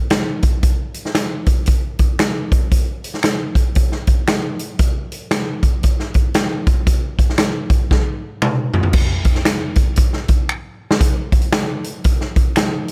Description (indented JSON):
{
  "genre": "soul",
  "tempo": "116 BPM",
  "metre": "4/4",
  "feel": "swing 61% on 8ths",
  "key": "none",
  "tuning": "none",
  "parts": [
    { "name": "swinging big-band drum kit", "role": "drums", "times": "0.1-12.9 s", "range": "crash cymbal, hi-hat, kick drum, snare drum, toms", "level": "-18 LUFS", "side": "equal", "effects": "none" },
    { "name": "finger snaps", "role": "percussion", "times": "0.1-12.7 s", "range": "none", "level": "-26 LUFS", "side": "equal", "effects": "none" }
  ],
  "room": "little or no reverb",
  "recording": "none",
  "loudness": "-18 LUFS",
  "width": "mono",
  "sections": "0.0-8.9 A section; 8.9-11.0 B section; 11.0-12.9 C section",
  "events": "drum fill 7.9-8.9, 10.5-11.0",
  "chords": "none",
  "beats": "0.11 | 0.63 1.16 1.68 2.20 | 2.72 3.24 3.76 4.28 | 4.80 5.32 5.83 6.35 | 6.87 7.39 7.91 8.42 | 8.94 9.46 9.98 10.49 | 11.01 11.53 12.04 12.56"
}